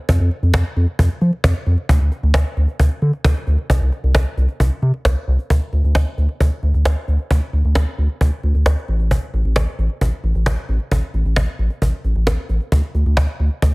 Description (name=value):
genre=synth-pop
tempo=133 BPM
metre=4/4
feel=straight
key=D minor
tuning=A4 = 440 Hz
part: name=round analog bass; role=bass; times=0.1-13.7 s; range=A1 to F3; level=-15 LUFS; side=equal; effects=none
part: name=cajon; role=drums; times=0.1-13.7 s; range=none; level=-21 LUFS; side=equal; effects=none
room=studio reverb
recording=heavily compressed radio sound, multiband compression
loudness=-16 LUFS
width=side -26 dB against mid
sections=0.0-5.5 A section; 5.5-13.7 B section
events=none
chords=none